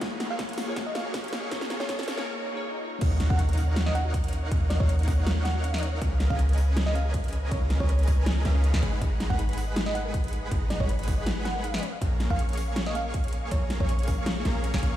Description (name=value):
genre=future bass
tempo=160 BPM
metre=4/4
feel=swing 53% on 16ths, half-time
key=Eb minor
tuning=A4 = 440 Hz
part: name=glassy digital keys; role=accompaniment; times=0.0-3.0 s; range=Bb3 to Db5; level=-38 LUFS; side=left 2 dB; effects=chorus, sidechain pumping, digital delay
part: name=dense compressed supersaw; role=riff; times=0.0-15.0 s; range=Ab3 to Db6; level=-34 LUFS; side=equal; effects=sidechain pumping, digital delay
part: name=warm 808-style bass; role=bass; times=0.0-15.0 s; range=Ab1 to Eb2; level=-26 LUFS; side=equal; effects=sidechain pumping, high-pass filter
part: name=big-room dance drum kit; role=drums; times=0.0-14.9 s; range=crash cymbal, hi-hat, snare drum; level=-34 LUFS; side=equal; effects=none
part: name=electronic kick drum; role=drums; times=0.0-14.2 s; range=none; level=-28 LUFS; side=equal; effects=none
part: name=riser, swell and impact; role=sound effects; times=0.0-4.5 s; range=none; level=-36 LUFS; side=equal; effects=none
part: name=bell-like FM electric piano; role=melody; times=0.3-14.0 s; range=Db5 to Gb5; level=-36 LUFS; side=right 2 dB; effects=chorus, tremolo, sidechain pumping, digital delay
part: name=soft round pluck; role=arpeggios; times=3.0-15.0 s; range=Db4 to F5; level=-41 LUFS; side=left 4 dB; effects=chorus, sidechain pumping, digital delay
room=digital ambience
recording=played on a big sound system in a bare room, stone room reverb, high-pass filter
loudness=-24 LUFS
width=side -12 dB against mid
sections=0.0-3.0 A section; 3.0-15.0 B section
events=build-up 0.0-3.0; drum fill 0.0-2.3; riser 0.0-2.3; break 2.3-3.0; swell 2.3-3.0; drop 3.0-15.0; impact 3.0-4.5; kick drops out 14.6-15.0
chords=0.0 Bbm7; 3.0 Ebm9; 6.0 Db13; 8.8 Abm9; 11.8 Bbm7